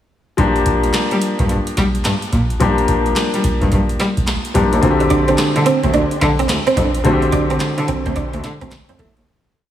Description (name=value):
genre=R&B, new jack swing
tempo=108 BPM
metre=4/4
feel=swing 64% on 16ths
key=G minor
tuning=A4 = 442 Hz
part: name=clear concert grand piano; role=accompaniment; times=0.4-9.3 s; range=D3 to G4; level=-18 LUFS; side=left 2 dB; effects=slapback echo
part: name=rich cello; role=bass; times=0.4-9.2 s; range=D2 to G3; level=-20 LUFS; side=equal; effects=none
part: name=booming analog drum machine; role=drums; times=0.4-9.3 s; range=handclaps, hi-hat, kick drum, snare drum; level=-20 LUFS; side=equal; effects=none
part: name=direct-recorded clean electric guitar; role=riff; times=5.0-9.1 s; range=A3 to D4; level=-19 LUFS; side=right 4 dB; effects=ensemble chorus, slapback echo
room=moderate lush hall reverb, RT60 2.5 s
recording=big arena sound, small room ambience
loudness=-14 LUFS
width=side -11 dB against mid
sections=0.4-9.3 verse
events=fade-out 7.0-9.3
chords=0.4 Gm7; 4.8 D7sus4